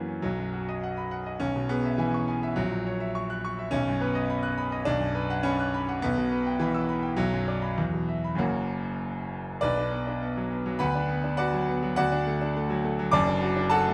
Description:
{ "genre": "classical, virtuoso piano study", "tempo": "103 BPM", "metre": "2/4", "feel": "rubato", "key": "B major, B minor from 4.9 s", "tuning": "A4 = 440 Hz", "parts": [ { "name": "clear grand piano", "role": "solo", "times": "0.0-13.9 s", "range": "F#1 to F#6", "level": "-28 LUFS", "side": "equal", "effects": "none" } ], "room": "light reverb", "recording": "close, detailed microphones", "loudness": "-28 LUFS", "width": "mono", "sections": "0.2-9.6 A section; 9.6-13.9 B section", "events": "none", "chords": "0.2 B; 1.4 C#m7/B; 2.6 F#7/A#; 3.7 B; 4.9 Bm; 6.0 Em/B; 7.2 Bm; 7.8 E5; 8.4 F#; 9.6 Bm; 10.8 Bm/D; 12.0 D; 13.1 D/F#", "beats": "| 0.23 0.82 | 1.41 1.99 | 2.57 3.15 | 3.73 4.30 | 4.87 5.44 | 6.02 6.60 | 7.19 7.79 | 8.40 9.02 | 9.63 10.22 | 10.81 11.39 | 11.98 12.56 | 13.13 13.71" }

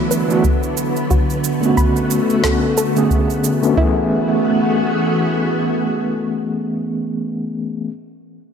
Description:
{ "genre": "sunset chillout", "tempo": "90 BPM", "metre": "4/4", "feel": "swing 57% on 16ths", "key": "F# minor", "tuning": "A4 = 438 Hz", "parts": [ { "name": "overdriven tine electric piano", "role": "accompaniment", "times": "0.0-7.9 s", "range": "D3 to G#4", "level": "-18 LUFS", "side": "moving between left 4 dB and right 3 dB", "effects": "medium tremolo, auto-pan, low-pass filter, tape echo" }, { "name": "soft string machine", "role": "sustained chords", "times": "0.0-7.2 s", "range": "D3 to G#4", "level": "-20 LUFS", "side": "left 1 dB", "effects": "ensemble chorus" }, { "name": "soft round pluck", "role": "arpeggios", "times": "0.0-4.1 s", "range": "E4 to B5", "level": "-25 LUFS", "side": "right 1 dB", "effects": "chorus, tape echo" }, { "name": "electronic cabasa and snare drum", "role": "drums", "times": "0.1-3.7 s", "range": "none", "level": "-26 LUFS", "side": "right 5 dB", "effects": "studio reverb" }, { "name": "electronic kick drum", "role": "drums", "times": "0.4-3.9 s", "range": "none", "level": "-18 LUFS", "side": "equal", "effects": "studio reverb" } ], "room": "moderate lush hall reverb, RT60 2.3 s", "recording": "none", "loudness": "-15 LUFS", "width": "side -7 dB against mid", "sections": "0.0-3.8 A section; 3.8-6.4 B section", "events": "filter sweep on tine electric piano 0.0-3.8", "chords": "0.0 D69; 1.1 Bm7/D; 3.8 F#m11", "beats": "0.44 | 1.10 1.77 2.44 3.10 | 3.77 4.44 5.11 5.77" }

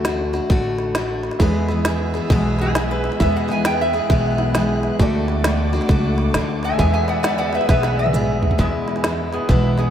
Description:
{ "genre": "honky-tonk and classic country", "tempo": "134 BPM", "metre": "4/4", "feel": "swing 64% on 8ths", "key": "E mixolydian", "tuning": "A4 = 441 Hz", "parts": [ { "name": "picked steel-string acoustic guitar", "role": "accompaniment", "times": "0.0-9.9 s", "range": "E2 to G#4", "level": "-22 LUFS", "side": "left 2 dB", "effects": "none" }, { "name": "upright bass", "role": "bass", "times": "0.0-9.9 s", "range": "A1 to E2", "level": "-23 LUFS", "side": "equal", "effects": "none" }, { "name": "organic electronic drum kit", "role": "drums", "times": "0.0-9.8 s", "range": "hi-hat, kick drum, snare drum, toms", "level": "-22 LUFS", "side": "equal", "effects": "none" }, { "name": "honky-tonk upright piano", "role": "accompaniment", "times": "1.4-8.6 s", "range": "E4 to E5", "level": "-30 LUFS", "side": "right 4 dB", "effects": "none" }, { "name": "muted chamber violin section", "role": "sustained chords", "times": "1.4-8.6 s", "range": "A4 to F#6", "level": "-32 LUFS", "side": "right 1 dB", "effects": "none" }, { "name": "lap resonator guitar", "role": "melody", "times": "2.6-9.9 s", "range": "G#3 to G#5", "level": "-24 LUFS", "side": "equal", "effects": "none" } ], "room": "wet cathedral reverb, RT60 7.2 s", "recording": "in a vast, echoing space", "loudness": "-16 LUFS", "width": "side -10 dB against mid", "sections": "0.0-8.6 A section; 8.6-9.9 B section", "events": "resonator guitar played with a steel bar solo 0.0-8.6; drum fill 7.7-8.6", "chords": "0.0 D; 1.4 E; 5.0 D; 6.8 E", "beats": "0.06 0.51 0.96 | 1.41 1.86 2.31 2.75 | 3.20 3.65 4.10 4.55 | 5.00 5.45 5.90 6.35 | 6.80 7.25 7.70 8.14 | 8.59 9.04 9.49" }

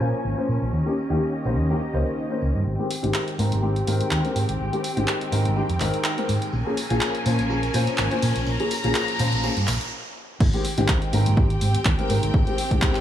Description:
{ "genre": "filtered disco house", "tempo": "124 BPM", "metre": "4/4", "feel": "swing 54% on 16ths", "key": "Ab major", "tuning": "A4 = 440 Hz", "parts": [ { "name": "dark baby grand piano", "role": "accompaniment", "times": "0.0-13.0 s", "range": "Eb3 to C5", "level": "-26 LUFS", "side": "left 2 dB", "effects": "phaser, sidechain pumping, low-pass filter" }, { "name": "warm studio string section", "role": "sustained chords", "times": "0.0-13.0 s", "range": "C4 to Bb5", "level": "-29 LUFS", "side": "left 1 dB", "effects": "sidechain pumping, low-pass filter" }, { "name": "hollow-body short-scale fingered electric bass", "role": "bass", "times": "0.0-12.8 s", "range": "Ab1 to Bb2", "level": "-24 LUFS", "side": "right 1 dB", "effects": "sidechain pumping, low-pass filter" }, { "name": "tambourine", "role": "percussion", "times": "0.0-9.9 s", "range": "none", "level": "-42 LUFS", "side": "right 4 dB", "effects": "none" }, { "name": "riser and noise sweep", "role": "sound effects", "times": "4.5-10.4 s", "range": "none", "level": "-35 LUFS", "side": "equal", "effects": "none" }, { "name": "punchy analog drum machine", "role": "drums", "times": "2.9-13.0 s", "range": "crash cymbal, handclaps, hi-hat", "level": "-29 LUFS", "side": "right 1 dB", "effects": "sidechain pumping on hats, high-pass filter on hats, high-pass filter on snare, sidechain pumping on cymbals, high-pass filter on cymbals, high-pass filter on room" }, { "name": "electronic kick drum", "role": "drums", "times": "10.4-12.9 s", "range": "none", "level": "-21 LUFS", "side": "equal", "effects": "none" } ], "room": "light reverb, digital ambience", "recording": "studio ambience", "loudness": "-20 LUFS", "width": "side -11 dB against mid", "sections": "0.0-2.7 A section; 2.7-10.4 B section; 10.4-13.0 C section", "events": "build-up 2.7-10.4; filter sweep 2.7-10.4; riser 4.5-9.9; noise sweep 8.5-10.4; stop 9.9-10.4; drop 10.4-13.0", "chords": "0.0 Bbm7; 0.7 Eb7; 2.7 Abmaj7; 6.5 Bbm7; 10.4 Abmaj7", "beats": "0.24 | 0.73 1.21 1.70 2.18 | 2.66 3.15 3.63 4.12 | 4.60 5.08 5.57 6.05 | 6.53 7.02 7.50 7.99 | 8.47 8.95 9.44 9.92 | 10.40 10.89 11.37 11.86 | 12.34 12.82" }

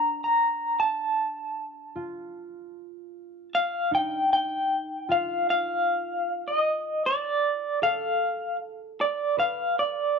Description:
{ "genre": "acoustic folk-pop ballad", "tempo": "77 BPM", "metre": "4/4", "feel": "straight", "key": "unclear", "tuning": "A4 = 438 Hz", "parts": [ { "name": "electric guitar through a small old amp", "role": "melody", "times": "0.0-10.2 s", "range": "D5 to Bb5", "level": "-24 LUFS", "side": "equal", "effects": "tremolo" }, { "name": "concert harp", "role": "arpeggios", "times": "0.0-10.2 s", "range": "D4 to B4", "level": "-38 LUFS", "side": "right 4 dB", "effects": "none" } ], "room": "moderate studio reverb, RT60 0.9 s", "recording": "dark, warm production", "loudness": "-24 LUFS", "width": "side -5 dB against mid", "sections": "0.0-4.3 A section; 4.3-10.2 B section", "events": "none", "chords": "0.0 N.C.; 1.2 Ebsus2; 7.4 Bm7b5", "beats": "0.40 | 1.18 1.96 2.74 3.52 | 4.31 5.09 5.87 6.65 | 7.43 8.21 8.98 9.75" }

